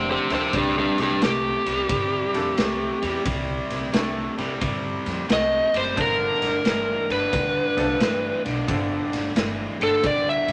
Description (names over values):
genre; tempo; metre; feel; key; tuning
electric blues shuffle; 88 BPM; 4/4; swing 66% on 8ths; C major; A4 = 441 Hz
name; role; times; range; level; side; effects
overdriven slide guitar; melody; 0.0-10.5 s; D4 to E5; -24 LUFS; equal; none
crunchy overdriven guitar; riff; 0.0-10.5 s; F2 to A3; -31 LUFS; equal; none
upright bass; bass; 0.0-10.5 s; F1 to G2; -36 LUFS; equal; none
tack piano; accompaniment; 0.3-9.1 s; F3 to A5; -33 LUFS; equal; none
raw garage drum kit; drums; 0.3-10.5 s; kick drum, ride cymbal, snare drum; -30 LUFS; equal; none
room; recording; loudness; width
moderate small room reverb, RT60 0.5 s; none; -23 LUFS; mono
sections
0.0-10.5 A section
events
none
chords
0.0 F69; 0.5 C69; 6.0 G13